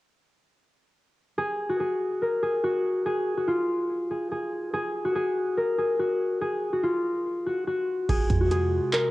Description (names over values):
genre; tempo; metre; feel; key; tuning
hip hop, trap; 143 BPM; 4/4; half-time; F phrygian; A4 = 439 Hz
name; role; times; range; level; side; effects
concert harp; melody; 1.4-9.1 s; F4 to Bb4; -25 LUFS; left 1 dB; low-pass filter
warbly tape-like pad; sustained chords; 8.1-9.1 s; C3 to F4; -33 LUFS; right 1 dB; chorus, built-in reverb, cassette tape
clean 808-style bass; bass; 8.1-8.8 s; F1 to F2; -26 LUFS; right 2 dB; none
booming analog drum machine; drums; 8.1-9.0 s; crash cymbal, handclaps, hi-hat, kick drum; -26 LUFS; right 2 dB; overdrive, cassette tape
room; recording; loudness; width
light reverb; home recording on cassette; -24 LUFS; side -18 dB against mid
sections
1.4-8.1 A section; 8.1-9.1 B section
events
none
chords
1.4 N.C.; 8.1 Fm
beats
| 1.38 1.80 2.22 2.64 | 3.06 3.48 3.90 4.32 | 4.74 5.15 5.57 5.99 | 6.41 6.83 7.25 7.67 | 8.09 8.51 8.93